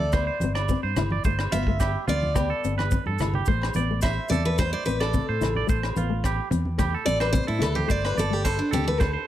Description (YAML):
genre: highlife guitar band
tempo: 108 BPM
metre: 4/4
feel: straight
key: A minor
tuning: A4 = 440 Hz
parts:
  - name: picked steel-string acoustic guitar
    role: melody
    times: 0.0-9.3 s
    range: D4 to E5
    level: -28 LUFS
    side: equal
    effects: slapback echo
  - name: nylon-string guitar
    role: accompaniment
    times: 0.0-9.0 s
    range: A3 to E4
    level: -32 LUFS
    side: left 7 dB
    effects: none
  - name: twangy electric guitar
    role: arpeggios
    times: 0.0-9.3 s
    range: F4 to D5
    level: -31 LUFS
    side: right 8 dB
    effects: slapback echo
  - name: fingered electric bass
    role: bass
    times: 0.0-9.2 s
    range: G1 to A2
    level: -28 LUFS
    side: equal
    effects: none
  - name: congas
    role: percussion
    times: 0.0-9.1 s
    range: none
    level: -31 LUFS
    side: right 1 dB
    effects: none
  - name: tight funk drum kit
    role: drums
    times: 0.1-9.1 s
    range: hi-hat, kick drum, rim click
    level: -28 LUFS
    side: equal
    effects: none
  - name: agogo bells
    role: percussion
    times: 0.1-9.1 s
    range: none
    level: -38 LUFS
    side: left 5 dB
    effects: none
  - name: maracas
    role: percussion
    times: 0.1-9.1 s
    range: none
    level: -42 LUFS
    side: left 7 dB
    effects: none
room: small room ambience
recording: none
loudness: -22 LUFS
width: side -12 dB against mid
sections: 0.0-9.3 A section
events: steel-string acoustic guitar solo 0.0-9.3; drum fill 2.8-3.5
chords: 0.0 Gsus2; 3.5 Am; 7.9 Gsus2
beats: 0.14 0.69 | 1.25 1.80 2.36 2.91 | 3.47 4.02 4.58 5.13 | 5.68 6.24 6.79 7.34 | 7.90 8.45 9.00